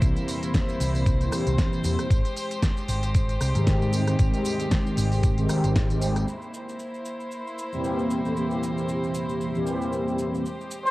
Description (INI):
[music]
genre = nu-disco, nu disco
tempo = 115 BPM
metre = 4/4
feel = swing 56% on 16ths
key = C mixolydian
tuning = A4 = 442 Hz
[part]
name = mellow synth brass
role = accompaniment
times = 0.0-10.4 s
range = Eb3 to A4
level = -27 LUFS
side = equal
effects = chorus, sidechain pumping, cassette tape, analog delay
[part]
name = warm chamber string section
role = sustained chords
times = 0.0-10.9 s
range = Ab3 to C5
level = -32 LUFS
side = equal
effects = sidechain pumping, cassette tape
[part]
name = picked electric bass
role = bass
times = 0.0-6.2 s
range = Ab1 to Ab2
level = -25 LUFS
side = equal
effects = none
[part]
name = electronic kick drum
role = drums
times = 0.0-5.9 s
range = none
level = -23 LUFS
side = equal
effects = cassette tape
[part]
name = pop drum kit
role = drums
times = 0.0-6.3 s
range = hi-hat, rim click, snare drum, tambourine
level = -32 LUFS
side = equal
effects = cassette tape
[part]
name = cabasa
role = percussion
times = 0.0-10.9 s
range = none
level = -44 LUFS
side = right 2 dB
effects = none
[part]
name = mellow trumpet section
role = melody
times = 10.9 s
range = C5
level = -19 LUFS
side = equal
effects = cassette tape
[sound]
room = light reverb, small room ambience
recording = home recording on cassette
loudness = -22 LUFS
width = side -18 dB against mid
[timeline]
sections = 0.0-6.3 A section; 6.3-10.9 B section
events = filter sweep on analog polysynth 0.0-6.3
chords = 0.0 C7; 2.1 Abmaj7; 6.3 C7